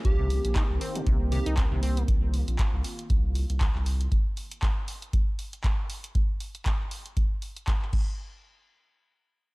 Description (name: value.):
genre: acid house.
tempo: 118 BPM.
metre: 4/4.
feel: swing 56% on 16ths.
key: C minor pentatonic.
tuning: A4 = 442 Hz.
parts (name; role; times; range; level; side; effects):
plucky unison lead; melody; 0.0-1.4 s; G4; -36 LUFS; right 1 dB; analog delay.
saturated sub bass; bass; 0.0-4.1 s; Bb1 to C2; -27 LUFS; equal; tube saturation, sidechain pumping.
electronic kick drum; drums; 0.0-8.0 s; none; -26 LUFS; equal; none.
punchy analog drum machine; drums; 0.0-8.0 s; crash cymbal, handclaps, hi-hat; -38 LUFS; equal; none.
lush unison pad; sustained chords; 0.1-4.1 s; Eb3 to G4; -36 LUFS; equal; chorus, vintage 12-bit sampler grit, sidechain pumping.
acid bass, saw; riff; 0.2-2.0 s; C3 to Eb4; -37 LUFS; equal; sidechain pumping, tape echo.
room: digital ambience.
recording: dry, gritty hardware recording.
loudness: -25 LUFS.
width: side -24 dB against mid.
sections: 0.0-8.2 A section; 8.2-9.5 B section.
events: filter sweep on analog synth pad 0.0-4.1.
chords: 0.0 Cm7; 4.1 N.C..